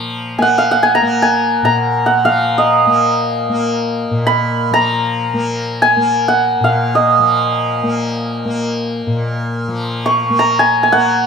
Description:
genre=indian classical, Hindustani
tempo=free time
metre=none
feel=none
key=Bb raga bhairavi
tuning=A4 = 439 Hz
part: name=tanpura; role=drone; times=0.0-11.3 s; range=Bb2 to Bb3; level=-19 LUFS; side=left 2 dB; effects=none
part: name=santur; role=melody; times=0.4-11.3 s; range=Eb5 to Db6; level=-13 LUFS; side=right 1 dB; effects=plate reverb
room=wet small room reverb, RT60 0.5 s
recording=none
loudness=-12 LUFS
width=side -6 dB against mid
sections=0.0-11.3 A section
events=none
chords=none

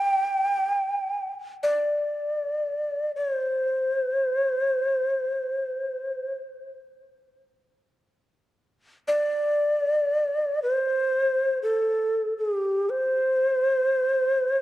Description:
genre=japanese traditional, Japanese chamber music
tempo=free time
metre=none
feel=none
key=unclear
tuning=A4 = 440 Hz
part: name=breathy mellow shakuhachi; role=solo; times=0.0-14.6 s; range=G4 to G5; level=-23 LUFS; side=equal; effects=analog delay
room=wet spring reverb, RT60 1.5 s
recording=dark, warm production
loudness=-23 LUFS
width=side -15 dB against mid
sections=0.0-14.6 A section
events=none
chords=none

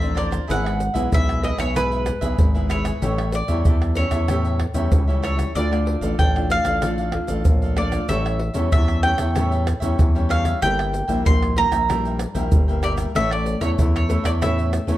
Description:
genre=samba and choro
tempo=95 BPM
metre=4/4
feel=straight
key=unclear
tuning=A4 = 440 Hz
part: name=bowl-back mandolin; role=melody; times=0.0-15.0 s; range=B4 to C6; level=-25 LUFS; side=right 1 dB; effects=none
part: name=cavaquinho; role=accompaniment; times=0.0-15.0 s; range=D4 to G5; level=-31 LUFS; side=right 2 dB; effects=none
part: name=nylon-string guitar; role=accompaniment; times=0.0-15.0 s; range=G2 to F4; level=-28 LUFS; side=left 3 dB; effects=none
part: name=growling FM bass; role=bass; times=0.0-15.0 s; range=G1 to E2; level=-23 LUFS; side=equal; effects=none
part: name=tube shaker, pandeiro, tamborim and surdo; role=percussion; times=0.0-15.0 s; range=none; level=-22 LUFS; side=equal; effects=none
room=light reverb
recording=dark, warm production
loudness=-18 LUFS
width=side -14 dB against mid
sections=0.0-15.0 A section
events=none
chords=0.5 E/G#; 3.0 A7; 5.6 Dm; 8.1 A7; 10.6 Edim/G; 13.2 A

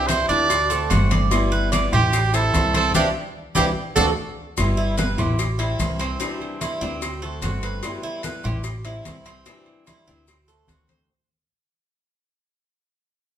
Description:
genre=latin, Cuban son and guajira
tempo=147 BPM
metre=4/4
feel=straight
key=G major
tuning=A4 = 440 Hz
part: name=warm trumpet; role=melody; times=0.0-4.1 s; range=G4 to D5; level=-22 LUFS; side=right 5 dB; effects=none
part: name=fingerpicked swing-style acoustic guitar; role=accompaniment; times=0.0-11.1 s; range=C3 to F#4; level=-30 LUFS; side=left 4 dB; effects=none
part: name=Cuban tres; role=arpeggios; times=0.0-11.1 s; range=C4 to D5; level=-27 LUFS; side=right 3 dB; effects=none
part: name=upright bass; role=bass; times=0.0-11.0 s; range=G1 to D2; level=-24 LUFS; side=equal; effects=none
part: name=congas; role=percussion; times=0.1-11.1 s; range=none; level=-27 LUFS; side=left 1 dB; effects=none
part: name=cowbell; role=percussion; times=0.1-11.1 s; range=none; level=-31 LUFS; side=left 4 dB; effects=none
part: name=maracas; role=percussion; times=0.1-11.1 s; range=none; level=-35 LUFS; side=left 6 dB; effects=none
part: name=timbales and agogo bells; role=percussion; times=0.1-10.9 s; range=none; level=-33 LUFS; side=right 6 dB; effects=none
room=moderate large studio reverb, RT60 1.2 s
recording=band playing live in one room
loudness=-19 LUFS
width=side -10 dB against mid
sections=0.0-4.6 A section; 4.6-11.1 B section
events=band accent 2.9-4.6; drum fill 3.8-4.6; fade-out 4.6-11.1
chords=0.0 Cadd9; 0.5 D7; 1.3 G6; 2.1 Am7; 2.9 Cadd9; 3.8 D7; 4.6 G6; 5.4 Am7; 6.2 Cadd9; 7.0 D7; 7.8 G6; 8.6 Am7; 9.5 Cadd9; 10.3 D7

